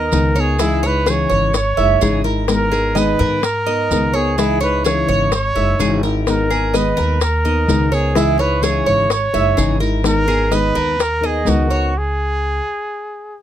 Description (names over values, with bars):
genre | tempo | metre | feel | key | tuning
latin, Cuban son and guajira | 127 BPM | 4/4 | straight | G# minor | A4 = 440 Hz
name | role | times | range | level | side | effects
breathy trumpet | melody | 0.0-13.4 s | F#4 to C#5 | -20 LUFS | right 1 dB | none
fingerpicked plugged-in old ladder-braced acoustic guitar | accompaniment | 0.0-11.9 s | C#3 to A#4 | -20 LUFS | left 4 dB | none
Cuban tres | arpeggios | 0.0-11.9 s | E4 to E5 | -22 LUFS | right 4 dB | none
upright bass | bass | 0.0-12.6 s | F#1 to G#2 | -20 LUFS | right 1 dB | none
bongos | percussion | 0.1-11.7 s | none | -22 LUFS | left 6 dB | none
maracas | percussion | 0.1-11.9 s | none | -30 LUFS | right 5 dB | none
room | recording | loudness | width
little or no reverb | none | -14 LUFS | side -11 dB against mid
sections
0.0-13.4 A section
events
stop 11.9-13.4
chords
0.0 G#madd9; 0.6 C#madd9; 2.5 G#madd9; 4.4 C#madd9; 6.3 G#madd9; 8.2 C#madd9; 10.1 G#madd9; 11.9 C#5